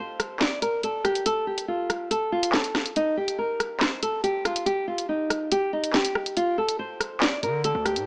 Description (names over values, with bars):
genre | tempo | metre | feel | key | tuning
hip hop, drill | 141 BPM | 4/4 | half-time | D phrygian | A4 = 440 Hz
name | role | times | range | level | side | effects
nylon-string guitar | melody | 0.0-8.0 s | Eb4 to D5 | -25 LUFS | equal | low-pass filter
drill drum kit | drums | 0.2-8.1 s | handclaps, hi-hat, rim click, snare drum | -24 LUFS | equal | none
hard-hitting 808-style bass | bass | 7.4-8.1 s | D2 to D3 | -31 LUFS | equal | none
room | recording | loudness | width
little or no reverb | small speaker sound | -23 LUFS | side -31 dB against mid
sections
0.0-8.1 A section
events
break 0.0-6.4; kick muted 6.4-7.2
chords
0.0 N.C.; 6.4 D5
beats
0.41 0.83 | 1.26 1.69 2.11 2.54 | 2.96 3.39 3.81 4.24 | 4.66 5.09 5.51 5.94 | 6.37 6.79 7.22 7.64